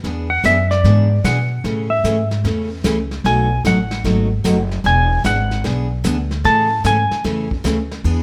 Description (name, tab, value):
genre	country, western swing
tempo	150 BPM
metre	4/4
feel	swing 66% on 8ths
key	A major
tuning	A4 = 440 Hz
part	picked steel-string acoustic guitar	accompaniment	0.0-8.2 s	B2 to G#4	-24 LUFS	equal	none
part	upright bass	bass	0.0-8.2 s	E1 to B2	-21 LUFS	equal	none
part	vintage brush drum kit	drums	0.0-8.2 s	brushed snare drum, hi-hat, kick drum, ride cymbal, snare drum	-29 LUFS	equal	none
part	clean lap steel guitar	melody	0.3-7.2 s	D5 to A5	-20 LUFS	equal	plate reverb
room	moderate studio reverb, RT60 0.9 s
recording	none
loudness	-17 LUFS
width	mono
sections	0.0-8.0 A section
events	electric slide guitar solo 0.0-8.0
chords	0.0 E7; 1.6 Amaj7; 3.2 B7; 4.8 E7; 6.4 Amaj7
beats	| 0.04 0.44 0.84 1.24 | 1.64 2.04 2.44 2.85 | 3.25 3.65 4.04 4.45 | 4.84 5.25 5.64 6.04 | 6.45 6.84 7.25 7.65 | 8.05